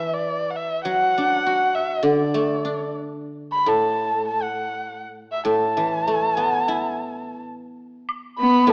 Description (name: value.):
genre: chinese traditional, Chinese chamber ensemble.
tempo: 101 BPM.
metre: 4/4.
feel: rubato.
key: A zhi mode.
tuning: A4 = 440 Hz.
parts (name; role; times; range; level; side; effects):
dark erhu; melody; 0.0-8.7 s; D5 to B5; -25 LUFS; equal; none.
guzheng; accompaniment; 0.0-8.7 s; A2 to F#4; -26 LUFS; equal; none.
woodblock; percussion; 8.1-8.7 s; none; -33 LUFS; equal; none.
clear cello; second line; 8.4-8.7 s; B3; -19 LUFS; equal; none.
room: moderate recital hall reverb, RT60 1.6 s.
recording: small speaker sound.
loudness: -22 LUFS.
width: mono.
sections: 0.0-8.1 A section.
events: none.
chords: none.